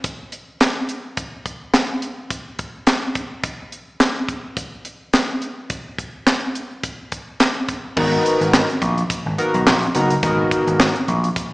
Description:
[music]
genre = early-eighties boogie funk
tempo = 106 BPM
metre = 4/4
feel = swing 56% on 16ths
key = unclear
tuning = A4 = 440 Hz
[part]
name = tight funk drum kit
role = drums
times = 0.0-11.5 s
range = crash cymbal, handclaps, hi-hat, kick drum, snare drum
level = -18 LUFS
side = equal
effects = slapback echo
[part]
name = chorused polysynth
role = accompaniment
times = 8.0-10.9 s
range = Cb4 to Bb4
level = -18 LUFS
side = equal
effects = plate reverb, slapback echo
[part]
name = vintage slap bass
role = bass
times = 8.0-11.3 s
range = Gb1 to Cb2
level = -20 LUFS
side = equal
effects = none
[sound]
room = light reverb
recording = live gig heard through the venue's PA, recital hall reverb, small speaker sound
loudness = -18 LUFS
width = side -22 dB against mid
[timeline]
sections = 0.0-8.0 A section; 8.0-11.5 B section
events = none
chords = 0.0 N.C.; 8.0 Abm9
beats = 0.04 0.61 | 1.18 1.74 2.31 2.87 | 3.44 4.00 4.57 5.14 | 5.70 6.27 6.84 7.40 | 7.97 8.53 9.10 9.67 | 10.23 10.80 11.36

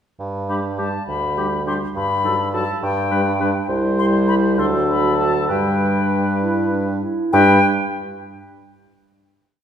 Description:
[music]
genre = quick classical-period movement for wind quintet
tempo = 64-69 BPM (dotted quarters)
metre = 6/8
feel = straight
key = G major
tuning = A4 = 442 Hz
[part]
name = warm bassoon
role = bass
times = 0.2-7.6 s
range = C2 to G2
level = -23 LUFS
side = right 2 dB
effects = none
[part]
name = bright concert flute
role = melody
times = 0.5-7.7 s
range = G5 to C6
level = -22 LUFS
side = left 5 dB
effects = none
[part]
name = mellow oboe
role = second line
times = 0.5-7.6 s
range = G4 to C5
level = -24 LUFS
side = equal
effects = none
[part]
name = dark clarinet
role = accompaniment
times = 0.5-7.6 s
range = D4 to E4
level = -24 LUFS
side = right 2 dB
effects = none
[part]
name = warm French horn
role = accompaniment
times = 0.5-7.6 s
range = F#3 to G3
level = -23 LUFS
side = left 1 dB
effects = none
[sound]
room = wet recital hall reverb, RT60 1.8 s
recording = heard from further back in the room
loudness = -16 LUFS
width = side -8 dB against mid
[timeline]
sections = 0.2-7.3 A section; 7.3-9.2 final chord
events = none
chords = 0.2 G; 2.0 B7b13/G; 2.8 G; 3.7 C; 4.6 D; 5.5 G; 7.3 G5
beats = | 0.20 1.08 | 1.96 2.82 | 3.69 4.58 | 5.49 6.41 | 7.33

